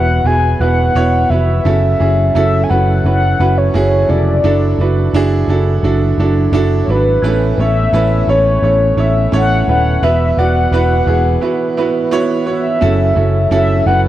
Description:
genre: piano-driven pop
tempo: 86 BPM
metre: 4/4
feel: straight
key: unclear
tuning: A4 = 440 Hz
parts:
  - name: mellow horn-like synth lead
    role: melody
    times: 0.0-14.0 s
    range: B4 to G#5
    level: -16 LUFS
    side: left 2 dB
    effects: chorus
  - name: clear upright piano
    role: accompaniment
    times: 0.0-14.1 s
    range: A2 to D5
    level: -16 LUFS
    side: right 4 dB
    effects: none
  - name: percussive tonewheel organ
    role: sustained chords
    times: 0.0-14.1 s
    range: C#3 to B4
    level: -25 LUFS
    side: left 3 dB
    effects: chorus vibrato, slow rotary speaker
  - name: vintage muted picked electric bass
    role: bass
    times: 0.0-14.1 s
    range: D#1 to A1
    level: -14 LUFS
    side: equal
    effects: none
room: digital ambience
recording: dry, close 1970s-style studio recording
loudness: -11 LUFS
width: side -13 dB against mid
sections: 0.0-12.8 A section; 12.8-14.1 A section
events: break 11.4-12.8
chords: 0.0 Esus2; 1.6 F#m7; 4.4 Dadd9/F#; 7.2 Aadd9; 10.0 Esus2; 12.8 F#m7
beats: 0.25 0.95 | 1.65 2.34 3.04 3.74 | 4.44 5.14 5.83 6.53 | 7.23 7.93 8.63 9.33 | 10.03 10.72 11.42 12.12 | 12.82 13.52

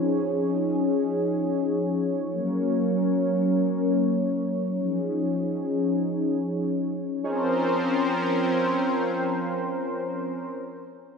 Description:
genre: synthwave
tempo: free time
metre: none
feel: none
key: Bb minor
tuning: A4 = 440 Hz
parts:
  - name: warm analog pad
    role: sustained chords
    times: 0.0-10.5 s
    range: F3 to Db5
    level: -23 LUFS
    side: left 1 dB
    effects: chorus
room: wet plate reverb, RT60 2.7 s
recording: bright 1980s-style digital production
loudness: -23 LUFS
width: side -5 dB against mid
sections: 0.0-7.3 A section; 7.3-9.7 B section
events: filter sweep on analog synth pad 0.0-7.3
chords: 0.0 Dbadd9; 2.3 Gb; 4.8 Dbadd9/F; 7.3 Bbmadd9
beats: free time

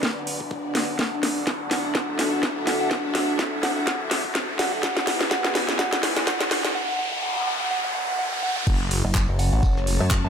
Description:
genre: bass house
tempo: 125 BPM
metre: 4/4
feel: swing 56% on 16ths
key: unclear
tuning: A4 = 439 Hz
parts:
  - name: dark analog pad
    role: sustained chords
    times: 0.0-10.3 s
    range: A3 to F#5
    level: -30 LUFS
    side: equal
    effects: chorus, phaser, sidechain pumping
  - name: electronic kick drum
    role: drums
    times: 0.0-10.2 s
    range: none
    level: -25 LUFS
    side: equal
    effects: high-pass filter on kick
  - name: garage drum kit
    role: drums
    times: 0.0-10.2 s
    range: crash cymbal, handclaps, hi-hat, ride cymbal, snare drum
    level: -24 LUFS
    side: equal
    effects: none
  - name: riser and noise sweep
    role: sound effects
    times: 0.0-8.7 s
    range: none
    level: -30 LUFS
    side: equal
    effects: none
  - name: rich studio string section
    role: texture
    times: 0.0-10.3 s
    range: B3 to A5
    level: -33 LUFS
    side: left 2 dB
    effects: sidechain pumping
  - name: soft synth bell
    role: melody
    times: 1.7-10.3 s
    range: F#5 to A5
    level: -30 LUFS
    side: right 2 dB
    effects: chorus, ping-pong delay
  - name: phased detuned saw bass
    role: bass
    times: 8.7-10.0 s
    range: F#1 to A1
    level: -22 LUFS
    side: equal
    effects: phaser, sidechain pumping
  - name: damped 70s drum kit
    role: drums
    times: 8.7-10.2 s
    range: hi-hat, snare drum, tambourine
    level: -39 LUFS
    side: left 2 dB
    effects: sidechain pumping on hats, high-pass filter on hats, high-pass filter on snare, sidechain pumping on perc, high-pass filter on perc, high-pass filter on room
  - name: pulsing pluck wobble bass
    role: bass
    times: 9.0-10.3 s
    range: F#1 to F#2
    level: -23 LUFS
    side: equal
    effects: chorus, tube saturation, sidechain pumping
room: moderate digital room reverb, RT60 1.0 s, small room ambience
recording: high-pass filter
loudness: -21 LUFS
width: side -7 dB against mid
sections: 0.0-8.7 A section; 8.7-10.3 B section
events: build-up 0.0-8.7; drum fill 0.0-6.8; riser 0.0-8.7; break 6.8-8.7; noise sweep 6.8-8.7; drop 8.7-10.3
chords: 0.0 Bm; 1.0 D; 4.8 E; 8.7 F#m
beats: 0.03 0.51 | 0.99 1.47 1.95 2.43 | 2.91 3.39 3.87 4.35 | 4.83 5.31 5.79 6.27 | 6.75 7.23 7.71 8.19 | 8.67 9.15 9.63 10.11

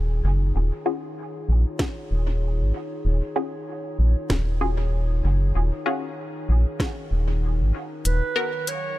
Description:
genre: ambient dub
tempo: 96 BPM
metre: 4/4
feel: swing 60% on 16ths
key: Eb minor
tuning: A4 = 440 Hz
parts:
  - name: warbly tape-like pad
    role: sustained chords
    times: 0.0-9.0 s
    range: Eb3 to Bb5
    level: -35 LUFS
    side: left 2 dB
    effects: chorus, built-in reverb
  - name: round analog bass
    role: bass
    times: 0.0-8.2 s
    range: Eb1 to Bb1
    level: -20 LUFS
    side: equal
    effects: none
  - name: filtered dub chord stab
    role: stabs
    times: 0.9-8.5 s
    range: Cb4 to Bb4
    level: -30 LUFS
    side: left 2 dB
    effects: phaser, dub echo
  - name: electronic kick drum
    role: drums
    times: 1.8-6.9 s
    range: none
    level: -27 LUFS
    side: equal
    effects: overdrive, studio reverb
  - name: organic electronic drum kit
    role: drums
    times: 1.8-8.8 s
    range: hi-hat, snare drum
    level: -32 LUFS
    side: equal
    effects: overdrive, studio reverb, dub echo
  - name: warm clarinet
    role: melody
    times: 8.1-9.0 s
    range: Cb5 to Db5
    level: -26 LUFS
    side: right 5 dB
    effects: none
room: little or no reverb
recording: none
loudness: -22 LUFS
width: side -16 dB against mid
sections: 0.0-9.0 A section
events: fade-in on ambient pad 0.0-9.0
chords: 0.0 Ebm11; 8.1 Abm7/Eb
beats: | 0.55 1.18 1.80 2.42 | 3.05 3.67 4.30 4.92 | 5.55 6.17 6.80 7.42 | 8.05 8.68

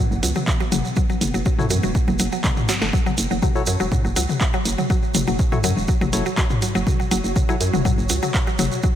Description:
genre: minimal techno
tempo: 122 BPM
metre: 4/4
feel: straight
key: unclear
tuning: A4 = 439 Hz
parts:
  - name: mallet-like synth pluck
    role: riff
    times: 0.0-8.9 s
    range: F#3 to A3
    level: -26 LUFS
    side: equal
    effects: chorus, phaser, sidechain pumping, analog delay
  - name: swarming drone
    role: texture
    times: 0.1-9.0 s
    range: E3 to F#4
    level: -32 LUFS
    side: right 1 dB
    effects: built-in reverb, sidechain pumping
  - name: hollow knocking FM bass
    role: bass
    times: 0.1-8.7 s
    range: E1 to F#2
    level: -23 LUFS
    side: equal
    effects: sidechain pumping
  - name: shekere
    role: percussion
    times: 0.1-8.9 s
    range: none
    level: -30 LUFS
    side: right 4 dB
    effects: none
  - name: punchy analog drum machine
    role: drums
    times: 0.2-8.7 s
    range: handclaps, hi-hat, snare drum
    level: -28 LUFS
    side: right 1 dB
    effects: none
  - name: electronic toms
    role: percussion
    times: 0.4-8.7 s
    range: none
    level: -27 LUFS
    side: left 3 dB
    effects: analog delay
  - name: electronic kick drum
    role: drums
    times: 0.5-8.9 s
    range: none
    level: -21 LUFS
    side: equal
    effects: none
  - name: percussive organ stab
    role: stabs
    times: 1.6-7.6 s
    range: E4 to C#5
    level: -31 LUFS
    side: left 2 dB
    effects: chorus, analog delay
room: light reverb, digital ambience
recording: none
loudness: -18 LUFS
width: side -10 dB against mid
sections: 0.0-9.0 A section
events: drum fill 2.7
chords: 0.0 F#7(no3)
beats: 0.47 | 0.97 1.46 1.95 2.44 | 2.93 3.43 3.92 4.41 | 4.90 5.39 5.88 6.38 | 6.87 7.36 7.85 8.34 | 8.84

